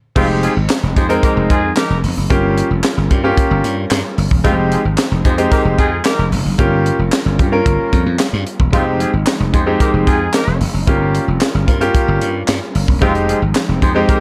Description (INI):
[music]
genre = early-eighties boogie funk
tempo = 112 BPM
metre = 4/4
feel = straight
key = F minor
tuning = A4 = 436 Hz
[part]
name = clear horn section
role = second line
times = 0.2-14.2 s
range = Ab3 to C5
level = -23 LUFS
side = equal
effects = none
[part]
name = clear baby grand piano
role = accompaniment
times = 0.2-14.2 s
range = Ab3 to Bb4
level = -19 LUFS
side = equal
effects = none
[part]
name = chorused pulse-width pad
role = sustained chords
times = 0.2-14.2 s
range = F3 to Bb4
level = -27 LUFS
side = equal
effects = none
[part]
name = slap bass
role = bass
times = 0.2-14.0 s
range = E1 to G2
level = -20 LUFS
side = equal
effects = none
[part]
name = tight funk drum kit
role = drums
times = 0.2-14.2 s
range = crash cymbal, handclaps, hi-hat, kick drum, snare drum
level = -19 LUFS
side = equal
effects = gated reverb
[sound]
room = studio reverb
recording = none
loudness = -15 LUFS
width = mono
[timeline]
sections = 0.2-14.2 A section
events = stop 0.0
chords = 0.2 Fm7; 2.3 Gm7b5; 4.4 Fm7; 6.6 Gm7b5; 8.7 Fm7; 10.9 Gm7b5; 13.0 Fm7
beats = | 0.16 0.70 1.23 1.77 | 2.30 2.84 3.37 3.91 | 4.45 4.98 5.52 6.05 | 6.59 7.12 7.66 8.20 | 8.73 9.27 9.80 10.34 | 10.87 11.41 11.95 12.48 | 13.02 13.55 14.09